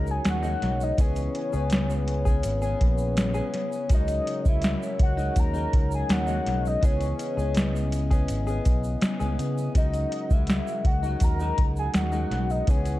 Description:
indie pop, bedroom pop; 82 BPM; 4/4; straight; A4 = 440 Hz
warbly nostalgic lead; melody; 0.0-13.0 s; C#5 to A#5; -31 LUFS; left 1 dB; wide subtle chorus
direct-recorded clean electric guitar; accompaniment; 0.0-13.0 s; C#3 to G#4; -33 LUFS; left 3 dB; wide subtle chorus, vibrato effect
mellow brass ensemble; sustained chords; 0.0-13.0 s; C#3 to F#5; -34 LUFS; left 1 dB
fingered electric bass; bass; 0.0-13.0 s; G#1 to C#3; -28 LUFS; equal
tube shaker; percussion; 0.1-13.0 s; -50 LUFS; right 5 dB
soft vintage rhythm box; drums; 0.2-13.0 s; hi-hat, kick drum, snare drum; -24 LUFS; equal; overdrive
light reverb, digital ambience; dark, warm production; -22 LUFS; side -16 dB against mid
0.0-13.0 A section
0.0 G#7sus4/C#; 1.0 C#m7; 3.9 G#7sus4/C#; 6.8 C#m7; 9.8 G#7sus4/C#

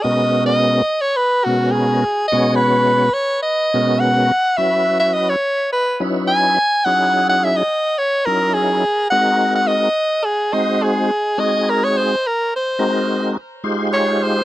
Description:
jazz; 106 BPM; 4/4; straight; A4 = 440 Hz
bright soprano saxophone; melody; 0.0-14.4 s; F#4 to G#5; -16 LUFS; equal
tonewheel organ; accompaniment; 0.0-14.4 s; B2 to C#5; -18 LUFS; equal; slow rotary speaker, overdrive, chorus vibrato
light reverb; dry, close 1970s-style studio recording; -15 LUFS; side -15 dB against mid
0.0-13.6 A section
0.0 G#m11/B; 4.6 C#m11; 9.1 G#9; 13.6 Fm9

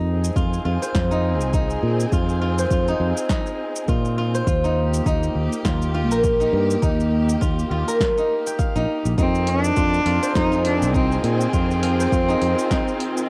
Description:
organic downtempo; 102 BPM; 4/4; swing 57% on 16ths; F minor; A4 = 440 Hz
clear studio string section; sustained chords; 0.0-13.3 s; Eb3 to Ab4; -31 LUFS; equal; sidechain pumping
steel-string zither; arpeggios; 0.0-13.3 s; Eb4 to G5; -26 LUFS; equal; analog delay
fretless electric bass; bass; 0.0-12.5 s; Bb1 to Bb2; -25 LUFS; equal
deep house drum kit; drums; 0.2-13.3 s; hi-hat, shaker, snare drum; -32 LUFS; equal; overdrive, cassette tape
electronic kick drum; drums; 0.4-12.8 s; -26 LUFS; equal; overdrive, cassette tape
rich cello; melody; 9.2-13.3 s; C4 to Eb4; -24 LUFS; equal; cassette tape, analog delay
light reverb; home recording on cassette; -21 LUFS; mono
0.0-13.3 A section
0.0 Fm7; 4.5 Ebadd9; 9.2 Fm7

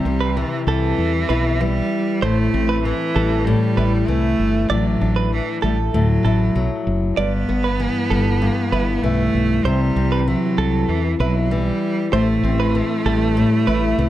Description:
acoustic pop; 97 BPM; 4/4; straight; A4 = 441 Hz
clear cello; second line; 0.0-14.1 s; E3 to B3; -22 LUFS; right 4 dB
nylon-string guitar; accompaniment; 0.0-14.1 s; G2 to E4; -21 LUFS; left 4 dB
woody fretless electric bass; bass; 0.1-14.1 s; F#1 to E2; -21 LUFS; equal
direct-recorded clean electric guitar; arpeggios; 0.2-13.8 s; A4 to D5; -26 LUFS; right 6 dB; wide subtle chorus
light reverb, small room ambience; dark, warm production; -16 LUFS; side -13 dB against mid
0.0-14.1 A section
0.0 C; 2.2 Am7; 4.7 Dadd9/A; 7.2 G6; 9.7 C; 12.1 Am7

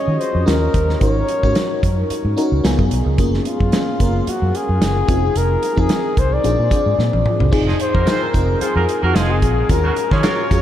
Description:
polished 1980s jazz-funk pop; 111 BPM; 4/4; swing 54% on 16ths; A4 = 440 Hz
breathy flugelhorn; melody; 0.0-10.6 s; F4 to D5; -22 LUFS; left 2 dB; diffuse ambient delay
FM electric piano with soft pad layer; accompaniment; 0.0-10.6 s; Bb3 to Bb4; -21 LUFS; left 1 dB; lush chorus
vintage muted fingered electric bass; bass; 0.1-10.6 s; F1 to Eb3; -19 LUFS; equal
modern studio drum kit; drums; 0.2-10.6 s; crash cymbal, hi-hat, kick drum, snare drum, toms; -20 LUFS; equal
clear horn section; second line; 7.7-10.5 s; Db3 to C5; -24 LUFS; right 4 dB
moderate cathedral reverb, RT60 6.0 s; dreamy mix soaked in reverb; -14 LUFS; side -11 dB against mid
0.0-7.5 A section; 7.5-10.6 B section
drum fill 7.0-7.5
0.5 Eb7; 1.0 Ab7sus4; 2.6 Db7; 3.2 Gbmaj7; 5.1 Fm7; 6.4 Bb7; 7.5 Fm7; 9.7 Ebm11

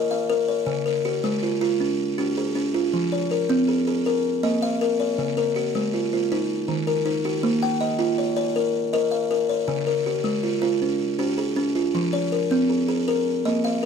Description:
southern african traditional, mbira-style interlocking cycle; 106 BPM (dotted quarters); 12/8; straight; Bb equiheptatonic; A4 = 440 Hz
buzzing kalimba; solo; 0.0-13.9 s; Db3+43c to G5-43c; -21 LUFS; equal
light reverb; -21 LUFS; side -6 dB against mid
0.0-13.9 A section
0.0 Bbm; 0.7 Db; 2.9 Fm; 4.1 Bbm; 5.2 Db; 6.3 Eb; 7.4 Bbm; 9.7 Db; 11.9 Fm; 13.1 Bb5

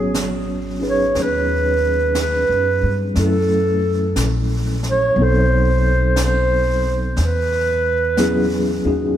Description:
jazz ballad; 60 BPM; 4/4; swing 67% on 8ths; G# minor; A4 = 440 Hz
breathy clarinet; melody; 0.0-8.8 s; G#4 to C#5; -19 LUFS; right 1 dB
tine electric piano; accompaniment; 0.0-9.2 s; F#3 to C#5; -21 LUFS; equal; medium tremolo
upright bass; bass; 0.0-9.2 s; G#1 to G2; -20 LUFS; equal
jazz brush drum kit; drums; 0.1-9.2 s; brushed snare drum, hi-hat, snare drum; -29 LUFS; right 2 dB
moderate plate reverb, RT60 2.8 s; heard from further back in the room; -15 LUFS; side -10 dB against mid
0.0-9.2 A section
0.0 G#m7; 3.2 F#m7; 5.2 B7b9; 7.2 E69

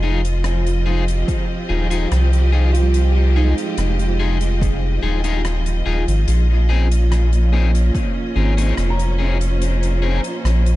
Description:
ambient dub; 72 BPM; 4/4; straight; F minor; A4 = 440 Hz
clear symphonic string section; sustained chords; 0.0-10.8 s; Bb2 to Eb5; -25 LUFS; right 1 dB
felt-muted upright piano; arpeggios; 0.0-10.8 s; G3 to Bb5; -29 LUFS; right 4 dB; dub echo
electric guitar at the edge of break-up; stabs; 0.0-10.2 s; C4 to Ab4; -27 LUFS; left 6 dB; harmonic tremolo, dub echo
round analog bass; bass; 0.0-10.8 s; Eb1 to C2; -16 LUFS; equal
soft-mallet drum kit; drums; 0.2-10.8 s; hi-hat, rim click; -33 LUFS; left 2 dB
electronic kick drum; drums; 1.3-8.1 s; -22 LUFS; equal; overdrive
small room ambience; nothing above 10.4 kHz; -15 LUFS; side -16 dB against mid
0.0-10.8 A section
0.0 Fm7; 6.3 Bbm11

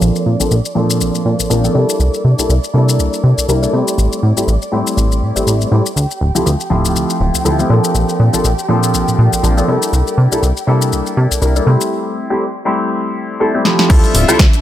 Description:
filtered disco house; 121 BPM; 4/4; swing 56% on 16ths; D minor; A4 = 435 Hz
clear grand piano; accompaniment; 0.0-14.4 s; F3 to Bb4; -16 LUFS; equal; phaser, vintage 12-bit sampler grit, sidechain pumping, low-pass filter
rich studio violin section; sustained chords; 0.0-14.6 s; D4 to D6; -25 LUFS; right 1 dB; sidechain pumping, low-pass filter
plucky analog bass; bass; 0.0-14.5 s; D1 to C3; -14 LUFS; equal; sidechain pumping, low-pass filter
punchy analog drum machine; drums; 0.0-14.6 s; crash cymbal, hi-hat, rim click, shaker, snare drum; -20 LUFS; left 3 dB; sidechain pumping on hats, sidechain pumping on perc, sidechain pumping on cymbals
electronic kick drum; drums; 13.9-14.5 s; -9 LUFS; equal
light reverb; -12 LUFS; side -12 dB against mid
0.0-13.9 A section
filter sweep 0.0-13.9; break 11.9-13.9; drum fill 13.7
0.0 Bbmaj9; 1.8 C13; 4.0 Am7; 6.0 Dm11; 7.7 Bbmaj9; 9.7 C13; 11.9 Am7; 13.9 Dm11

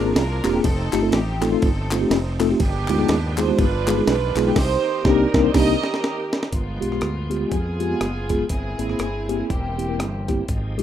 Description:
uptempo gospel; 122 BPM; 4/4; swing 59% on 8ths; C minor; A4 = 441 Hz
warm studio string section; melody; 0.0-10.4 s; Ab3 to Eb5; -26 LUFS; right 4 dB; tape echo
mellow tine electric piano; accompaniment; 0.0-10.8 s; G2 to Bb4; -21 LUFS; left 1 dB; medium stereo tremolo
bright tonewheel organ; sustained chords; 0.0-10.8 s; Eb3 to G5; -35 LUFS; right 3 dB; slow rotary speaker, chorus vibrato
fingered electric bass; bass; 0.0-10.8 s; E1 to F2; -26 LUFS; equal
breakbeat sampler-style drum kit; drums; 0.2-10.8 s; crash cymbal, hi-hat, kick drum, ride cymbal, rim click, snare drum; -24 LUFS; equal
group handclap; percussion; 0.4-4.5 s; -30 LUFS; left 3 dB
light reverb; rough home demo mix; -19 LUFS; side -10 dB against mid
0.0-6.5 A section; 6.5-10.8 B section
band accent 4.6-6.5; drum fill 5.5-6.5
0.0 Bb9; 0.6 F9; 2.6 G7b9b13; 4.6 Cm9; 6.5 G7b9; 8.5 C7b13/G; 9.5 C7/E

